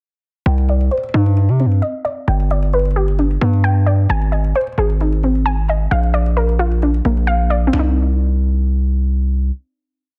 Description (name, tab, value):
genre	hip hop, trap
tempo	132 BPM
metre	4/4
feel	half-time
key	C minor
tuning	A4 = 440 Hz
part	warbly dusty pluck	arpeggios	0.5-10.2 s	Bb3 to Ab5	-22 LUFS	equal	chorus, low-pass filter, tape echo
part	distorted 808-style bass	bass	0.5-9.5 s	G1 to C3	-17 LUFS	equal	distortion
part	cajon	drums	0.5-7.8 s	none	-42 LUFS	equal	none
room	small room ambience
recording	dense, heavily limited modern master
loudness	-17 LUFS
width	mono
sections	0.5-7.7 breakdown; 7.7-10.2 final chord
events	filter sweep on synth pluck 0.5-7.7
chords	0.5 Cmadd9; 2.3 G; 4.1 Ab; 5.9 Bb; 7.7 Cmadd9